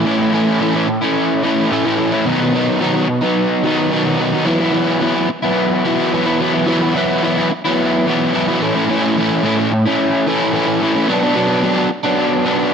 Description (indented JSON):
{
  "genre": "rock",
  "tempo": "109 BPM",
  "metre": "4/4",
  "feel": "straight",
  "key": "unclear",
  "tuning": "A4 = 440 Hz",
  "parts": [
    { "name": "crunchy overdriven guitar", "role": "solo", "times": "0.0-12.7 s", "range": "A2 to E4", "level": "-14 LUFS", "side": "equal", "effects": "harmonic tremolo, slapback echo" }
  ],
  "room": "moderate plate reverb, RT60 2.4 s",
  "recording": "none",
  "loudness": "-14 LUFS",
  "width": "side -7 dB against mid",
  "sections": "0.0-4.5 A section; 4.5-12.7 B section",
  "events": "none",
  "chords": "0.0 A; 2.3 B; 4.5 Esus2; 8.6 A; 11.1 Bm"
}